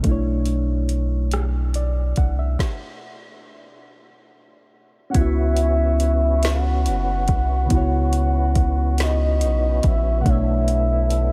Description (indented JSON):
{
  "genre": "slow six-eight R&B",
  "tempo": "47 BPM (dotted quarters)",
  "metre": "6/8",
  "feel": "straight",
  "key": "C# phrygian",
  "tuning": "A4 = 440 Hz",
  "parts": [
    { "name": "reed electric piano", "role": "accompaniment", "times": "0.0-11.3 s", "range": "B2 to F#5", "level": "-29 LUFS", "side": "equal", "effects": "lush chorus" },
    { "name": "smooth R&B drum kit", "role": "drums", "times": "0.0-11.3 s", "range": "hi-hat, kick drum, rim click, snare drum", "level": "-26 LUFS", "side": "equal", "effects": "none" },
    { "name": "round analog bass", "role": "bass", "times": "0.1-11.3 s", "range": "F#1 to C#2", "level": "-23 LUFS", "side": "equal", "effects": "none" },
    { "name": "soft octave-layered synth lead", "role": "melody", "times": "5.1-11.3 s", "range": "D#5 to F#5", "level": "-27 LUFS", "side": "equal", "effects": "chorus, tremolo, delay" },
    { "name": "percussive tonewheel organ", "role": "sustained chords", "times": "5.1-11.3 s", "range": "A3 to F#4", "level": "-34 LUFS", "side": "equal", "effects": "overdrive, chorus vibrato, slow rotary speaker" }
  ],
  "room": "light reverb, digital ambience",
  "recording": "none",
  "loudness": "-20 LUFS",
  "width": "mono",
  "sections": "0.0-5.2 A section; 5.2-11.3 B section",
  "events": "stop 2.6-5.2",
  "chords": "0.0 Bm11; 2.6 N.C.; 5.2 C#m11; 10.3 Bm11"
}